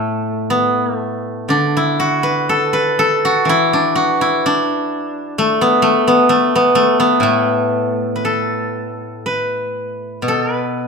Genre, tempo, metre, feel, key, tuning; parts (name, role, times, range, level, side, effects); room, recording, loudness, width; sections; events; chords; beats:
chinese traditional, Chinese solo plucked strings; 58-66 BPM; 2/4; rubato; A zhi mode; A4 = 440 Hz
steel-string zither; solo; 0.0-10.9 s; A2 to B4; -14 LUFS; equal
moderate recital hall reverb, RT60 1.4 s; minimal, uncompressed stereo recording; -14 LUFS; side -4 dB against mid
0.0-9.2 A section; 9.2-10.9 B section
0.49 | 1.49 2.49 | 3.47 4.43 | 5.35 6.28 | 7.22 8.22 | 9.25 10.24